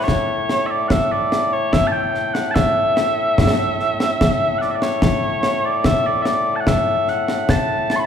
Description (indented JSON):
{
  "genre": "scottish traditional, Scottish pipe music",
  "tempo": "73 BPM",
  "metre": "3/4",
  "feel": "straight",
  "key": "A mixolydian",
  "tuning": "A4 = 440 Hz",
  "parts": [
    { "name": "mellow small bagpipes", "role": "melody", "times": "0.0-8.1 s", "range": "A2 to C#6", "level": "-18 LUFS", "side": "left 1 dB", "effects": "none" },
    { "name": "concert snare drum and concert bass drum", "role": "drums", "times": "0.1-8.1 s", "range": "none", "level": "-20 LUFS", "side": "equal", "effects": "none" }
  ],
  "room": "moderate recital hall reverb, RT60 1.7 s",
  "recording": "recorded in a church or concert hall",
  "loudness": "-16 LUFS",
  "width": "side -8 dB against mid",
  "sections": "0.1-8.1 A section",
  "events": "none",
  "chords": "none",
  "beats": "| 0.09 0.92 1.74 | 2.56 3.38 4.20 | 5.03 5.85 6.67 | 7.49"
}